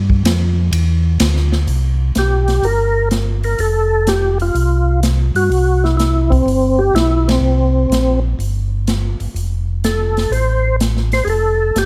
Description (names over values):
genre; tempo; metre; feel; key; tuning
soul jazz organ trio; 125 BPM; 4/4; swing 68% on 8ths; C mixolydian; A4 = 438 Hz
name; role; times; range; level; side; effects
mellow tonewheel organ; bass; 0.0-11.9 s; F1 to G2; -18 LUFS; equal; slow rotary speaker
swinging big-band drum kit; drums; 0.1-11.9 s; hi-hat, kick drum, ride cymbal, snare drum; -23 LUFS; equal; none
percussive tonewheel organ; melody; 2.2-11.9 s; C4 to C5; -19 LUFS; equal; slow rotary speaker, overdrive, chorus vibrato, plate reverb
room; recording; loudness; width
light reverb; close, detailed microphones; -16 LUFS; mono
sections
0.0-1.7 A section; 1.7-11.9 B section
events
band accent 7.2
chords
0.0 G5; 1.7 C5; 3.6 Fadd9; 5.5 C5; 9.3 F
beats
0.25 0.73 1.20 | 1.68 2.16 2.64 3.12 | 3.60 4.08 4.55 5.03 | 5.51 5.99 6.47 6.95 | 7.43 7.91 8.39 8.87 | 9.35 9.83 10.31 10.79 | 11.27 11.75